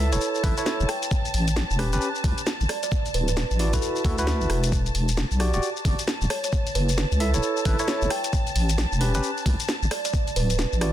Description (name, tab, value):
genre	UK garage, two-step garage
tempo	133 BPM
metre	4/4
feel	swing 62% on 16ths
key	unclear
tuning	A4 = 440 Hz
part	muted studio violin section	sustained chords	0.0-10.9 s	A5	-34 LUFS	right 1 dB	sidechain pumping
part	tine electric piano	stabs	0.0-10.9 s	C#4 to E5	-28 LUFS	right 1 dB	medium tremolo, digital delay
part	deep soft wobble bass	bass	0.0-10.9 s	D1 to D2	-23 LUFS	equal	chorus, tube saturation
part	garage drum kit	drums	0.1-10.9 s	hi-hat, rim click, shaker, snare drum	-29 LUFS	left 1 dB	studio reverb
part	electronic kick drum	drums	0.4-10.2 s	none	-25 LUFS	equal	studio reverb
part	kalimba	melody	0.6-10.6 s	A4 to G5	-33 LUFS	right 2 dB	vintage 12-bit sampler grit
room	light reverb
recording	dense, heavily limited modern master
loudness	-22 LUFS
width	side -12 dB against mid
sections	0.0-10.9 A section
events	none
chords	0.0 F#m7 (rootless); 0.9 A9; 2.7 D6; 4.7 Em9; 6.3 F#m7; 8.1 A9; 9.9 D5